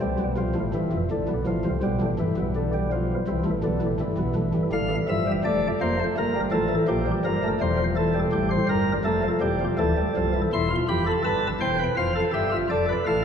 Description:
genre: classical, baroque-style 4-part fugue for pipe organ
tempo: 83 BPM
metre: 4/4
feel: straight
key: F major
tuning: A4 = 440 Hz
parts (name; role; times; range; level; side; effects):
- chamber organ, sparkling flutes; solo; 0.0-13.2 s; C1 to C6; -22 LUFS; equal; none
room: wet church reverb, RT60 3.3 s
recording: small room ambience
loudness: -22 LUFS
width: side -7 dB against mid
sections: 0.0-13.2 A section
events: none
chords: 0.4 Dm7; 1.8 G; 3.3 C; 4.7 F; 6.2 Gm7; 7.6 C/E; 9.1 F; 10.5 C/E; 12.0 Dm7/F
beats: 0.38 1.10 | 1.83 2.55 3.27 4.00 | 4.72 5.45 6.17 6.89 | 7.62 8.34 9.06 9.79 | 10.52 11.25 11.97 12.70

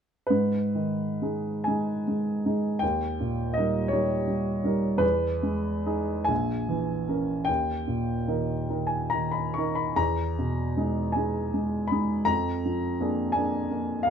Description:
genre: classical, romantic nocturne for solo piano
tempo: 42-58 BPM (dotted quarters)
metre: 6/8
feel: rubato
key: G# minor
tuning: A4 = 443 Hz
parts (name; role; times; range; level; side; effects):
- warm baby grand piano; solo; 0.3-14.1 s; A#1 to C#6; -24 LUFS; equal; none
room: light reverb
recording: dark, warm production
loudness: -25 LUFS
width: side -7 dB against mid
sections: 0.3-14.1 A section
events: none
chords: 0.3 G#m; 2.8 D#7; 5.0 Emaj7; 6.3 A#m7b5; 7.5 D#; 10.0 Emaj7; 12.3 A#7/E#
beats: | 0.31 1.67 | 2.82 3.92 | 5.02 6.30 | 7.48 8.69 | 9.98 11.14 | 12.27 13.36

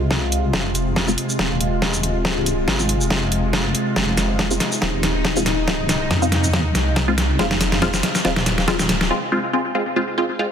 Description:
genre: deep dubstep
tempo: 140 BPM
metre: 4/4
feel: swing 55% on 16ths, half-time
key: F minor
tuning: A4 = 441 Hz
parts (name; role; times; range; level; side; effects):
- bowed-like drone; sustained chords; 0.0-9.1 s; C3 to F4; -24 LUFS; equal; built-in reverb, phaser
- filtered dub chord stab; stabs; 0.0-10.5 s; Ab3 to F4; -22 LUFS; equal; phaser, dub echo
- deep soft wobble bass; bass; 0.0-9.1 s; Eb1 to F2; -22 LUFS; equal; chorus
- dubstep drum kit; drums; 0.1-9.1 s; hi-hat, shaker, snare drum; -21 LUFS; equal; overdrive
- electronic kick drum; drums; 0.1-8.8 s; none; -28 LUFS; equal; overdrive, high-pass filter on kick, high-pass filter on room
room: moderate lush hall reverb, RT60 1.7 s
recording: none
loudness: -17 LUFS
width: side -8 dB against mid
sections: 0.0-10.5 A section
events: build-up 0.0-10.5; drum fill 0.0-9.1; filter sweep on synth stab 0.0-10.5; break 9.1-10.5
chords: 0.0 Fm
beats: 0.11 | 0.54 0.96 1.39 1.82 | 2.25 2.68 3.11 3.54 | 3.96 4.39 4.82 5.25 | 5.68 6.11 6.54 6.96 | 7.39 7.82 8.25 8.68 | 9.11 9.54 9.96 10.39

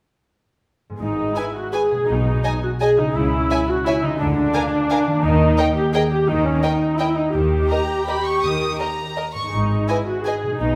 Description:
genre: classical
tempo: 157-186 BPM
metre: 3/4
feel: rubato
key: G# minor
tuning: A4 = 440 Hz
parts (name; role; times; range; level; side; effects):
- concert harp; arpeggios; 0.9-10.8 s; G#2 to A#4; -29 LUFS; equal; none
- dark symphonic viola section; accompaniment; 1.0-10.8 s; C#4 to G#4; -23 LUFS; equal; none
- dark symphonic double bass section; bass; 1.0-10.8 s; G#1 to D#2; -28 LUFS; equal; none
- warm symphonic cello section; bass; 1.0-10.8 s; G#2 to D#3; -29 LUFS; equal; none
- warm symphonic violin section; melody; 1.4-10.3 s; G5 to D#6; -29 LUFS; equal; none
- dark symphonic violin section; second line; 1.4-10.3 s; A#4 to G#5; -30 LUFS; equal; none
room: wet scoring stage reverb, RT60 1.6 s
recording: none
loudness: -20 LUFS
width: mono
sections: 1.0-10.8 A section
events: none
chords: 1.0 G#m; 2.1 G#m/B; 3.2 C#m; 4.2 A#7/D; 5.2 D#; 9.5 G#m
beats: | 1.00 1.36 1.74 | 2.09 2.44 2.81 | 3.16 3.50 3.87 | 4.21 4.55 4.91 | 5.24 5.58 5.94 | 6.28 6.62 6.98 | 7.33 7.69 8.07 | 8.43 8.79 9.16 | 9.52 9.88 10.25 | 10.60

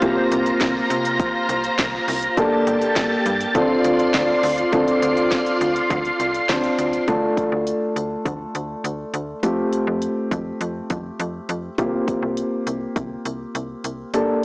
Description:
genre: synth-pop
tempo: 102 BPM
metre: 4/4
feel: straight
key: D minor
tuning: A4 = 441 Hz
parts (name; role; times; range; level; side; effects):
- dark grand piano; accompaniment; 0.0-14.4 s; A3 to D5; -21 LUFS; equal; none
- ensemble organ-string; sustained chords; 0.0-7.1 s; Bb3 to C6; -22 LUFS; equal; ensemble chorus
- slap-like FM bass; bass; 0.0-14.3 s; G1 to C3; -28 LUFS; equal; transformer saturation
- house drum kit; drums; 0.0-14.3 s; hi-hat, kick drum, snare drum; -26 LUFS; equal; none
room: moderate lush hall reverb, RT60 2.3 s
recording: blown-out, overdriven recording, overdrive, small speaker sound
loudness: -19 LUFS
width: side -24 dB against mid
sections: 0.0-4.7 A section; 4.7-7.1 B section; 7.1-14.4 C section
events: grand piano fill 3.8-4.7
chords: 0.0 C7sus4; 2.4 Gmadd9; 3.5 Dm7; 7.1 Dm; 9.4 Fadd9; 11.8 C7sus4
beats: | 0.02 0.61 1.20 1.78 | 2.37 2.96 3.55 4.14 | 4.73 5.31 5.90 6.49 | 7.08 7.67 8.26 8.84 | 9.43 10.02 10.61 11.20 | 11.79 12.37 12.96 13.55 | 14.14

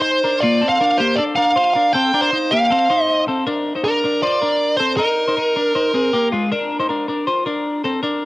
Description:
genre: indie pop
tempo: 158 BPM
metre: 4/4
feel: straight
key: unclear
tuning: A4 = 443 Hz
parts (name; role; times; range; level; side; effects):
- smooth overdriven lead guitar; melody; 0.0-6.3 s; Bb4 to G5; -17 LUFS; right 1 dB; cassette tape
- twelve-string electric guitar; arpeggios; 0.0-8.3 s; Ab3 to C5; -19 LUFS; left 2 dB; cassette tape
room: moderate spring reverb, RT60 2.6 s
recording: home recording on cassette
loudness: -15 LUFS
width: side -19 dB against mid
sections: 0.0-3.5 A section; 3.5-8.3 B section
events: none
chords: 0.4 Gm7; 1.9 Cmadd9; 2.7 F; 3.5 Bb; 5.0 Abadd9; 6.5 Cm9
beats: 0.04 | 0.42 0.80 1.18 1.56 | 1.94 2.32 2.70 3.08 | 3.46 3.84 4.22 4.61 | 4.99 5.37 5.75 6.13 | 6.51 6.89 7.27 7.66 | 8.04

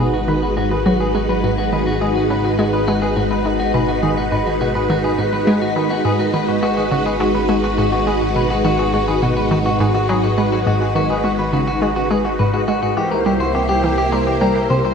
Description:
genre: ambient, sequencer-driven space music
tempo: 104 BPM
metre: 4/4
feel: straight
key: unclear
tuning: A4 = 439 Hz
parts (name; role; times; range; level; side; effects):
- string machine, full ensemble; sustained chords; 0.0-14.9 s; G#3 to C5; -19 LUFS; equal; phaser, ensemble chorus
- clean electric guitar; arpeggios; 0.0-14.9 s; F#4 to C5; -22 LUFS; left 2 dB; auto-pan, low-pass filter, tape echo
- analog pluck; riff; 0.0-14.8 s; G#2 to G#3; -21 LUFS; equal; chorus, cassette tape, tape echo
- fat analog bass; bass; 0.0-14.9 s; G#1 to C2; -25 LUFS; equal; none
room: wet plate reverb, RT60 3.6 s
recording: echo-heavy mix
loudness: -15 LUFS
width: side -6 dB against mid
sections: 0.0-14.9 A section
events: none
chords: 0.0 G#m7; 13.0 C7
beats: 0.28 0.86 | 1.44 2.01 2.59 3.17 | 3.74 4.32 4.90 5.47 | 6.05 6.63 7.21 7.78 | 8.36 8.94 9.51 10.09 | 10.67 11.24 11.82 12.40 | 12.97 13.55 14.13 14.71

